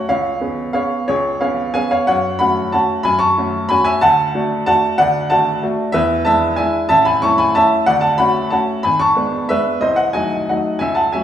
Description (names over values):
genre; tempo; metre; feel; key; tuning
classical, piano waltz; 185 BPM; 3/4; rubato; F# minor; A4 = 441 Hz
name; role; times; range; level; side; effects
clear upright piano; solo; 0.0-11.2 s; G#1 to C#6; -14 LUFS; equal; none
room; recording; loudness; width
wet recital hall reverb, RT60 1.5 s; recorded in a church or concert hall, small room ambience; -14 LUFS; side -10 dB against mid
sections
0.0-11.2 A section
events
none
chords
0.1 C#7; 2.1 F#m; 4.0 D; 6.0 E7; 6.9 A; 7.9 Dmaj7; 8.8 G#dim; 9.8 Cdim7